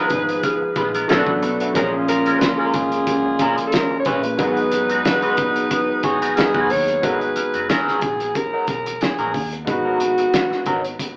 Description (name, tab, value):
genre	lush 1970s-style soul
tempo	91 BPM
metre	4/4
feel	swing 54% on 16ths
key	G# dorian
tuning	A4 = 436 Hz
part	growling alto saxophone	melody	0.0-11.0 s	F#4 to C#5	-24 LUFS	equal	none
part	clear grand piano	accompaniment	0.0-11.2 s	A#2 to B4	-28 LUFS	equal	none
part	mellow French horn section	sustained chords	0.0-7.0 s	A#2 to B4	-28 LUFS	equal	none
part	electric guitar at the edge of break-up	riff	0.0-11.0 s	F#3 to C#5	-27 LUFS	equal	wah, spring reverb
part	clear horn section	stabs	0.0-6.7 s	C#3 to G#4	-28 LUFS	equal	tape echo
part	vintage muted fingered electric bass	bass	0.0-11.0 s	E#1 to A#2	-38 LUFS	equal	none
part	cloth-damped thuddy drum kit	drums	0.1-11.2 s	hi-hat, kick drum, snare drum	-26 LUFS	equal	none
part	congas	percussion	0.1-10.8 s	none	-43 LUFS	equal	none
part	large celesta	texture	0.4-1.4, 5.7-9.2 s	D#6 to G#6	-31 LUFS	equal	none
room	moderate studio ambience, RT60 0.5 s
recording	band playing live in one room, AM radio sound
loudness	-20 LUFS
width	mono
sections	0.0-7.0 A section; 7.0-11.2 B section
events	none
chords	0.0 G#m69; 1.1 Bm7; 1.8 A#m7; 4.4 G#m7; 7.0 G#m9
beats	0.43 1.09 | 1.75 2.41 3.07 3.73 | 4.39 5.05 5.71 6.37 | 7.03 7.69 8.35 9.01 | 9.67 10.33 10.99